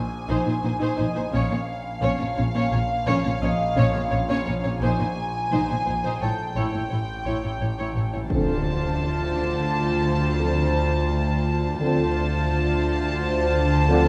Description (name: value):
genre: cinematic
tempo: 86 BPM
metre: 5/4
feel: straight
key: D minor from 8.3 s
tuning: A4 = 439 Hz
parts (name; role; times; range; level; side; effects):
- dark studio violin section; melody; 0.0-14.1 s; F5 to A5; -32 LUFS; equal; none
- overtone-sweeping drone; drone; 0.0-14.1 s; A1 to D2; -34 LUFS; equal; chorus, built-in reverb
- Celtic harp; texture; 0.0-13.3 s; D4 to A5; -38 LUFS; equal; none
- warm studio violin section; second line; 0.3-14.1 s; C5 to Db5; -33 LUFS; equal; none
- dark studio viola section; accompaniment; 0.3-14.1 s; Db4 to F4; -32 LUFS; equal; none
- dark studio double bass section; bass; 0.3-14.1 s; A1 to D2; -29 LUFS; equal; none
- warm studio cello section; bass; 0.3-14.1 s; A2 to D3; -31 LUFS; equal; none
- dark French horn section; sustained chords; 8.3-14.1 s; C4 to A4; -30 LUFS; equal; none
- warm trombone section; sustained chords; 8.3-14.1 s; D3 to F3; -30 LUFS; equal; none
- impact; sound effects; 8.3-11.8 s; none; -35 LUFS; equal; none
room: moderate scoring stage reverb, RT60 1.9 s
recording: dark, warm production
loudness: -24 LUFS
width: mono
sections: 0.0-8.3 A section; 8.3-14.1 B section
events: impact 8.3-11.8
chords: 0.0 Ab/Bb; 1.3 Bbm; 4.8 Ab/Bb; 6.2 A7; 8.3 Dm7